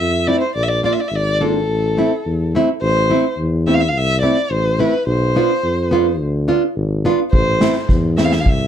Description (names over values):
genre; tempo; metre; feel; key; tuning
klezmer; 106 BPM; 4/4; straight; A harmonic minor; A4 = 437 Hz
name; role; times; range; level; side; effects
dark violin; melody; 0.0-8.7 s; A4 to F5; -19 LUFS; left 1 dB; none
mellow tuba; bass; 0.0-8.7 s; G#1 to F2; -19 LUFS; left 1 dB; none
nylon-string guitar; accompaniment; 0.3-8.3 s; A3 to F4; -17 LUFS; right 1 dB; none
street-band drum kit; drums; 7.3-8.6 s; kick drum, snare drum; -16 LUFS; equal; none
room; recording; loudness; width
light reverb; dark, warm production; -14 LUFS; side -9 dB against mid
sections
0.0-2.8 A section; 2.8-8.7 A section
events
none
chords
0.0 Am; 0.6 Bb; 1.7 Am; 5.1 Bdim; 7.3 Am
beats
| 0.55 1.12 1.68 2.25 | 2.81 3.38 3.94 4.51 | 5.07 5.63 6.20 6.76 | 7.33 7.89 8.46